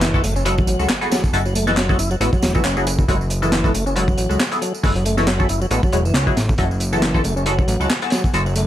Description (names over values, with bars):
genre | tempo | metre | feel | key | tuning
breakbeat, breaks | 137 BPM | 4/4 | swing 55% on 16ths | F# minor | A4 = 438 Hz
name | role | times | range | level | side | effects
tonewheel organ | riff | 0.0-8.7 s | E3 to E4 | -23 LUFS | equal | overdrive, fast rotary speaker, tube saturation, vintage 12-bit sampler grit, digital delay
band-passed chord stab | stabs | 0.0-8.4 s | G#3 to C#5 | -24 LUFS | left 2 dB | phaser, lush chorus, digital delay
fat analog bass | bass | 0.0-8.7 s | E1 to C#2 | -21 LUFS | equal | none
crunchy breakbeat drum kit | drums | 0.0-8.7 s | hi-hat, kick drum, snare drum | -20 LUFS | equal | none
electronic handclaps and tambourine | drums | 0.0-8.7 s | none | -28 LUFS | right 1 dB | none
impact | sound effects | 0.0-1.3 s | none | -33 LUFS | equal | none
room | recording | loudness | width
little or no reverb | vinyl crackle | -16 LUFS | side -12 dB against mid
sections
0.0-8.7 A section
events
impact 0.0-1.3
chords
0.0 F#m9